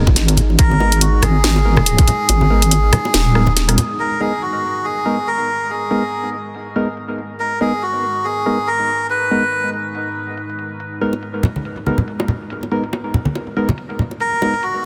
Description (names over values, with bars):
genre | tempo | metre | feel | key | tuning
deep dubstep | 141 BPM | 4/4 | swing 57% on 16ths, half-time | G# minor | A4 = 440 Hz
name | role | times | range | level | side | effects
deep dark ambient pad | sustained chords | 0.0-14.9 s | G#3 to A#5 | -32 LUFS | equal | chorus, built-in reverb
percussive organ stab | stabs | 0.0-14.5 s | G#3 to A#4 | -26 LUFS | equal | chorus, dub echo
deep soft wobble bass | bass | 0.0-3.8 s | D#1 to G#1 | -17 LUFS | equal | chorus
electronic kick drum | drums | 0.1-2.1 s | none | -14 LUFS | equal | none
congas and bongos | percussion | 0.1-3.9, 11.1-14.5 s | none | -22 LUFS | equal | dub echo
garage drum kit | drums | 0.2-14.7 s | hi-hat, rim click, snare drum | -20 LUFS | equal | soft clipping on snare, low-pass filter on snare, low-pass filter on hats
melodica | melody | 0.6-9.7, 14.2-14.8 s | F#4 to B4 | -22 LUFS | equal | dub echo
room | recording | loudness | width
moderate huge ambient reverb, RT60 4.8 s | dense, heavily limited modern master | -17 LUFS | mono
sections
0.0-4.0 A section; 4.0-14.9 B section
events
kick drops out 2.3-4.0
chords
0.0 G#madd9